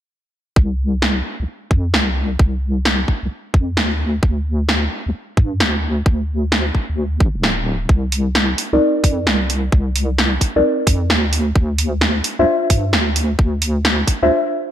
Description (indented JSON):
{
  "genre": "UK garage, two-step garage",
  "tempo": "131 BPM",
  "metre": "4/4",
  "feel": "swing 65% on 16ths",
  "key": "unclear",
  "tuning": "A4 = 444 Hz",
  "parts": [
    { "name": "deep soft wobble bass", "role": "bass", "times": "0.6-14.3 s", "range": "D1 to G2", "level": "-19 LUFS", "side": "equal", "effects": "chorus" },
    { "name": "electronic kick drum", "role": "drums", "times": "0.6-14.2 s", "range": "none", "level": "-14 LUFS", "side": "equal", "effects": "none" },
    { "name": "punchy analog drum machine", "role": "drums", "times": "1.0-14.2 s", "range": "hi-hat, snare drum", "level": "-18 LUFS", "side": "equal", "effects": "gated reverb" },
    { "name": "deep mellow chord stab", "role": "stabs", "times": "8.7-14.7 s", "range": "C4 to E5", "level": "-17 LUFS", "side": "left 1 dB", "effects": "chorus, ping-pong delay" }
  ],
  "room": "light reverb",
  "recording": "bright 1980s-style digital production",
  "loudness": "-15 LUFS",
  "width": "side -11 dB against mid",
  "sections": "0.6-14.7 A section",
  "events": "filter sweep on wobble bass 0.6-14.7; break 14.3-14.7",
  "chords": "0.6 N.C.; 4.0 D5; 7.9 Cm9; 11.3 Dm9"
}